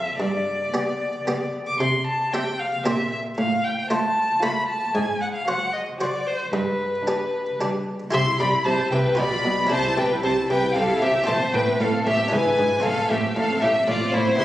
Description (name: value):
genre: classical, baroque-style concerto movement with solo episodes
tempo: 114 BPM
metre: 3/4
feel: straight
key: C major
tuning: A4 = 440 Hz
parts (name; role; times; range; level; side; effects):
- rich studio violin section; melody; 0.0-14.4 s; G4 to C6; -28 LUFS; left 2 dB; none
- rich violin; melody; 0.0-14.4 s; E4 to D6; -24 LUFS; left 1 dB; none
- rich chamber violin section; second line; 0.0-14.4 s; D4 to C6; -27 LUFS; equal; none
- buff-stop harpsichord; accompaniment; 0.0-14.4 s; G2 to E5; -27 LUFS; equal; none
- rich studio viola section; accompaniment; 0.0-14.4 s; Gb3 to G4; -31 LUFS; right 1 dB; none
- rich chamber cello section; bass; 0.0-14.4 s; G2 to C3; -29 LUFS; right 2 dB; none
- rich chamber double bass section; bass; 8.1-14.4 s; G1 to C2; -31 LUFS; right 1 dB; none
room: wet concert hall reverb, RT60 2.1 s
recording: recorded on a phone in the room, club reverb, compression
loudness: -20 LUFS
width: side -14 dB against mid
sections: 0.0-8.1 A section; 8.1-14.4 B section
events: none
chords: 0.2 G; 1.8 C; 2.9 C7/Bb; 3.4 F/A; 4.9 Ab7; 6.5 G; 8.1 C; 9.2 G7/B; 9.7 C; 11.3 Am; 12.3 E7/G#; 12.8 Am